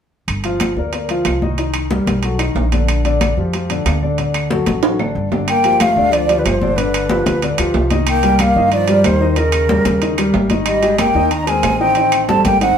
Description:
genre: Afro-Cuban jazz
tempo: 185 BPM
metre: 4/4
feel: straight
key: G minor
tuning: A4 = 440 Hz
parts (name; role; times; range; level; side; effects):
- upright bass; bass; 0.3-12.7 s; G1 to G2; -20 LUFS; equal; none
- claves; percussion; 0.3-12.3 s; none; -30 LUFS; right 2 dB; none
- congas; percussion; 0.3-12.8 s; none; -23 LUFS; left 2 dB; none
- timbales; percussion; 0.3-12.8 s; none; -22 LUFS; right 6 dB; none
- warm concert grand piano; accompaniment; 0.4-12.7 s; D3 to F5; -19 LUFS; left 2 dB; none
- breathy mellow silver concert flute; melody; 5.5-12.8 s; Bb4 to Bb5; -16 LUFS; right 1 dB; none
- clear trombone; second line; 5.5-12.8 s; Db3 to Eb4; -22 LUFS; left 3 dB; none
room: wet studio reverb, RT60 0.6 s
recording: band playing live in one room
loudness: -13 LUFS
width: side -8 dB against mid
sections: 0.3-5.5 A section; 5.5-12.8 B section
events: drum fill 4.8-5.5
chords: 0.3 Gm7; 1.6 Cm7; 2.2 B7; 2.9 Bb6; 4.2 D; 5.5 Gm9; 6.8 G7; 8.1 Cm11; 9.4 Eb7; 10.7 Abmaj9; 12.0 Am7b5

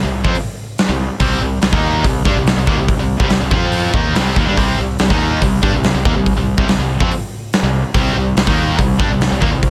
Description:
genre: hard rock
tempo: 142 BPM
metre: 4/4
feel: straight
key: C minor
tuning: A4 = 440 Hz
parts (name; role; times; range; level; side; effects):
- distorted electric guitar; riff; 0.0-9.7 s; C3 to F4; -24 LUFS; equal; overdrive
- sludgy distorted guitar; riff; 0.0-9.7 s; C3 to F4; -26 LUFS; equal; none
- tight distorted guitar; riff; 0.0-9.7 s; C3 to F4; -24 LUFS; equal; distortion
- fuzz fingered electric bass; bass; 0.0-9.7 s; C2 to G2; -22 LUFS; equal; overdrive
- big rock drum kit; drums; 0.2-9.7 s; hi-hat, kick drum, snare drum; -19 LUFS; equal; none
room: light reverb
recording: none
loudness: -15 LUFS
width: mono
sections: 0.0-9.7 A section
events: none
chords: 0.0 Cm; 3.5 F5; 3.9 Cm

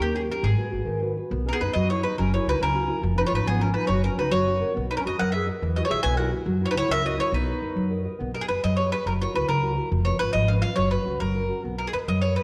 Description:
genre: italian folk, Italian serenade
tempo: 139 BPM (dotted quarters)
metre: 6/8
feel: rubato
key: B major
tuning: A4 = 440 Hz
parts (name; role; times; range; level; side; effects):
- bowl-back mandolin; melody; 0.0-12.4 s; G4 to G#5; -29 LUFS; equal; none
- nylon-string guitar; accompaniment; 0.0-12.4 s; B2 to D#5; -30 LUFS; equal; none
- upright bass; bass; 0.0-12.4 s; E#1 to F#2; -29 LUFS; equal; none
- clear clarinet; second line; 1.5-8.0 s; B3 to B4; -34 LUFS; equal; none
room: moderate concert hall reverb, RT60 1.7 s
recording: worn, warbling old tape, cassette tape, warbly pitch drift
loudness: -25 LUFS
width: mono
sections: 0.0-1.3 A section; 1.3-8.2 B section; 8.2-12.4 B section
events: none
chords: 0.4 G#m7; 1.3 B6; 2.2 F#7; 3.0 C#7/E#; 3.9 F#sus4; 4.3 F#; 4.8 Bmaj7; 5.6 Eadd9; 6.5 F#7; 7.3 Bmaj7; 8.2 B6; 9.1 F#7; 9.9 C#7/E#; 10.8 F#sus4; 11.2 F#; 11.6 Bmaj7

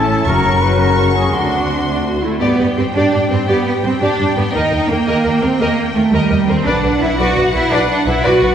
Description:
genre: cinematic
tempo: 113 BPM (dotted quarters)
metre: 12/8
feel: straight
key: G major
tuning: A4 = 440 Hz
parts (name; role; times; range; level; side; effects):
- warm symphonic violin section; melody; 0.0-8.5 s; F#5 to C#6; -24 LUFS; left 2 dB; none
- concert flute; second line; 0.0-1.9 s; F#5 to B5; -24 LUFS; left 3 dB; none
- rich symphonic violin section; second line; 0.0-8.5 s; E4 to Eb5; -23 LUFS; left 2 dB; none
- warm symphonic viola section; accompaniment; 0.0-8.5 s; C#4 to B4; -21 LUFS; right 1 dB; none
- clear trombone section; sustained chords; 0.0-2.2 s; A2 to A3; -26 LUFS; right 2 dB; none
- dark French horn section; sustained chords; 0.0-2.2 s; C4 to F#4; -23 LUFS; left 4 dB; none
- dark trumpet section; stabs; 0.0-1.9 s; F#4 to B4; -19 LUFS; left 2 dB; none
- rich symphonic cello section; bass; 0.0-8.5 s; D2 to F#4; -16 LUFS; right 2 dB; none
- rich symphonic double bass section; bass; 0.0-8.5 s; F#1 to G2; -20 LUFS; right 1 dB; none
- timpani; percussion; 0.3-0.8 s; F#2; -23 LUFS; left 2 dB; none
room: wet scoring stage reverb, RT60 1.8 s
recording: heard from further back in the room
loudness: -12 LUFS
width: side -8 dB against mid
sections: 0.0-2.4 A section; 2.4-8.5 B section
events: none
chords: 0.3 F#; 1.3 D7; 2.4 G; 4.5 Eb; 6.7 Bm

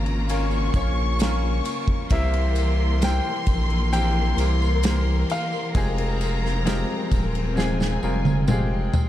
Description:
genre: pop ballad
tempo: 66 BPM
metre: 4/4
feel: straight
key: F minor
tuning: A4 = 440 Hz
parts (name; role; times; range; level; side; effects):
- clear concert grand piano; melody; 0.0-8.4 s; Db5 to G5; -32 LUFS; left 1 dB; none
- warm symphonic violin section; second line; 0.0-9.1 s; G5 to Db6; -32 LUFS; equal; tape echo
- bright upright piano; accompaniment; 0.0-9.1 s; Bb2 to Db5; -29 LUFS; left 2 dB; none
- warm studio string section; sustained chords; 0.0-9.1 s; Db3 to Bb4; -30 LUFS; left 2 dB; none
- saturated sub bass; bass; 0.0-8.9 s; Eb1 to C2; -23 LUFS; equal; none
- loose indie drum kit; drums; 0.1-9.1 s; kick drum, ride cymbal, snare drum, toms; -26 LUFS; equal; none
- tambourine; percussion; 0.3-9.1 s; none; -43 LUFS; right 6 dB; none
room: light reverb, small room reverb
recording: dark, warm production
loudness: -20 LUFS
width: side -13 dB against mid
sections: 0.0-9.1 A section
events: drum fill 7.6-9.1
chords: 0.0 Bbm; 2.1 C7; 5.7 Fmadd9

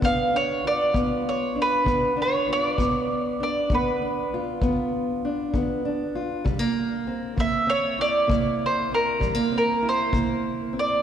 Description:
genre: acoustic country blues, solo or duo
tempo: 65 BPM (dotted quarters)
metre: 12/8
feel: straight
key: G mixolydian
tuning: A4 = 440 Hz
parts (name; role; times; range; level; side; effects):
- bowl-back mandolin; melody; 0.0-11.0 s; Bb4 to F5; -23 LUFS; right 1 dB; none
- fingerpicked steel-string acoustic guitar; accompaniment; 0.0-11.0 s; G2 to F4; -26 LUFS; equal; none
- kick drum; drums; 0.0-10.3 s; none; -30 LUFS; left 1 dB; none
room: wet church reverb, RT60 3.1 s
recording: recorded in a church or concert hall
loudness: -22 LUFS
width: side -9 dB against mid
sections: 0.0-11.0 A section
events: none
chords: 0.0 G7; 6.5 C7

